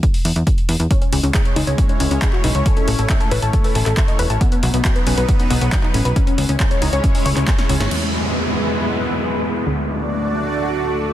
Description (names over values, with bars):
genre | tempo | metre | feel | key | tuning
uplifting trance | 137 BPM | 4/4 | straight | E major | A4 = 440 Hz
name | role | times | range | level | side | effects
electronic kick drum | drums | 0.0-7.6 s | none | -17 LUFS | equal | none
punchy analog drum machine | drums | 0.0-8.0 s | crash cymbal, handclaps, hi-hat, snare drum | -25 LUFS | equal | sidechain pumping on hats, sidechain pumping on cymbals
plucky analog bass | bass | 0.2-11.1 s | E1 to E2 | -20 LUFS | equal | sidechain pumping
lush unison pad | sustained chords | 0.9-11.1 s | F#3 to D5 | -23 LUFS | equal | chorus, phaser, sidechain pumping
wide unison pluck | arpeggios | 0.9-7.9 s | C#3 to A5 | -23 LUFS | left 3 dB | cassette tape, sidechain pumping, tape echo
downlifter | sound effects | 7.9-11.1 s | none | -23 LUFS | equal | none
room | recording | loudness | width
light reverb, digital ambience | dense, heavily limited modern master | -15 LUFS | side -12 dB against mid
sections
0.0-7.9 A section; 7.9-11.1 B section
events
drum fill 7.5-7.9; band accent 7.8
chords
0.0 N.C.; 0.9 C#m; 2.7 A; 4.4 B; 6.2 C#m; 7.9 E; 9.7 D